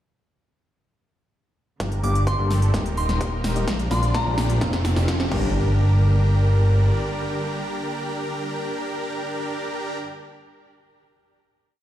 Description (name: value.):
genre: EDM, festival progressive house.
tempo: 128 BPM.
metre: 4/4.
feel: straight.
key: G minor.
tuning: A4 = 440 Hz.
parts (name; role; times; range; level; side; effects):
rich studio string section; sustained chords; 1.8-10.0 s; C3 to Bb3; -32 LUFS; right 2 dB; sidechain pumping.
big supersaw lead; riff; 1.8-10.0 s; C4 to D5; -29 LUFS; equal; sidechain pumping, low-pass filter, tape echo.
fat analog bass; bass; 1.8-6.9 s; Eb1 to Bb1; -20 LUFS; equal; sidechain pumping.
big-room dance drum kit; drums; 1.8-5.4 s; crash cymbal, hi-hat, snare drum; -29 LUFS; equal; overdrive.
electronic kick drum; drums; 1.8-5.4 s; none; -32 LUFS; equal; overdrive, high-pass filter on kick.
riser and impact; sound effects; 3.0-10.0 s; none; -32 LUFS; equal; none.
soft synth bell; melody; 2.0-4.7 s; Bb5 to D6; -29 LUFS; left 1 dB; chorus, tremolo, tape echo.
felt-muted upright piano; accompaniment; 2.0-10.0 s; G2 to G4; -32 LUFS; left 4 dB; sidechain pumping, tape echo.
room: light reverb.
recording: played on a big sound system in a bare room, stone room reverb.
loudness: -20 LUFS.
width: side -12 dB against mid.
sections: 1.8-5.6 build; 5.6-9.3 final hit.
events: build-up 1.8-5.6; drum fill 1.8-5.6; filter sweep on supersaw synth 1.8-5.6; riser 3.0-5.6.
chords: 1.8 Gm; 2.7 Eb; 3.7 Bb; 4.6 F; 5.3 Gm.